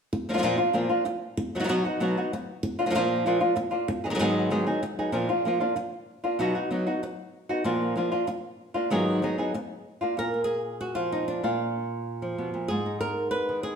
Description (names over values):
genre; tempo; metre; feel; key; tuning
flamenco; 191 BPM; 4/4; straight; Bb phrygian dominant; A4 = 440 Hz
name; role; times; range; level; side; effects
flamenco guitar; solo; 0.1-13.8 s; Ab2 to Cb5; -25 LUFS; equal; none
room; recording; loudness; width
wet large studio reverb, RT60 1.3 s; band playing live in one room; -25 LUFS; side -6 dB against mid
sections
0.1-10.2 A section; 10.2-13.8 B section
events
none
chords
0.1 Bb; 1.4 B; 2.6 Bb; 3.9 Abm7; 5.1 Bb; 6.4 B; 7.7 Bb; 8.9 Abm7; 9.5 Bb; 12.7 Abm